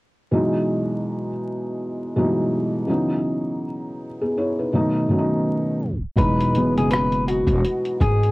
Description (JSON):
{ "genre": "lo-fi hip hop", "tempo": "82 BPM", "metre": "4/4", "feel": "swing 61% on 16ths", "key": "E major", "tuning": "A4 = 441 Hz", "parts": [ { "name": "felt-muted upright piano", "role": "accompaniment", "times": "0.3-8.3 s", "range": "B2 to C#5", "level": "-21 LUFS", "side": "equal", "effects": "cassette tape, low-pass filter" }, { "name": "electric guitar through a small old amp", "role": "melody", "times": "6.2-8.3 s", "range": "F#4 to B4", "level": "-22 LUFS", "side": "left 1 dB", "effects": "low-pass filter" }, { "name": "upright bass", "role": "bass", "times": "6.2-8.3 s", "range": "E1 to G#1", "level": "-22 LUFS", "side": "equal", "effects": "none" }, { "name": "lo-fi sampler-style drum kit", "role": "drums", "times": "6.2-8.3 s", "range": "hi-hat, kick drum, rim click", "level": "-23 LUFS", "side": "equal", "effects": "cassette tape" } ], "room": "light reverb", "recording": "home recording on cassette, vinyl crackle, tape stop", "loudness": "-19 LUFS", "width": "side -21 dB against mid", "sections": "0.3-6.2 A section; 6.2-8.3 B section", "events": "tape stop 5.8-6.2", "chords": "0.3 Emaj9; 2.9 C#m11; 4.7 B7; 6.2 Emaj9", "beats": "| 0.32 1.05 1.78 2.51 | 3.25 3.98 4.71 5.44 | 6.17 6.90 7.64" }